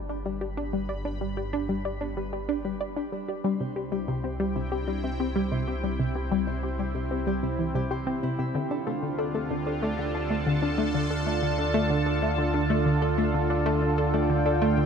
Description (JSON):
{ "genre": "ambient, sequencer-driven space music", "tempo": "94 BPM", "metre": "4/4", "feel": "straight", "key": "D dorian", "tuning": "A4 = 441 Hz", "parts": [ { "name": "sweeping resonant pad", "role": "sustained chords", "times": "0.0-14.9 s", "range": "C3 to B5", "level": "-29 LUFS", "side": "right 2 dB", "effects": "chorus" }, { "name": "Celtic harp", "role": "arpeggios", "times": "0.0-14.9 s", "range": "B3 to E5", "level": "-36 LUFS", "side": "moving between left 3 dB and right 4 dB", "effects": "auto-pan, tape echo" }, { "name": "analog pluck", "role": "riff", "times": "0.0-14.9 s", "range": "C3 to D5", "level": "-28 LUFS", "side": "left 1 dB", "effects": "chorus, phaser, tape echo" }, { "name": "round analog bass", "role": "bass", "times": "0.0-14.9 s", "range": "G1 to D2", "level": "-33 LUFS", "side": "equal", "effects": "none" } ], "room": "wet huge ambient reverb, RT60 8.8 s", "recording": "none", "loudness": "-25 LUFS", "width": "side -6 dB against mid", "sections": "0.0-14.9 A section", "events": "fade-in on harp 0.0-14.9; fade-in on analog synth pad 0.0-14.9", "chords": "0.0 G; 3.4 C; 8.6 Dm", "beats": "0.25 | 0.89 1.53 2.17 2.81 | 3.44 4.08 4.72 5.36 | 6.00 6.63 7.27 7.91 | 8.55 9.19 9.83 10.46 | 11.10 11.74 12.38 13.02 | 13.66 14.29" }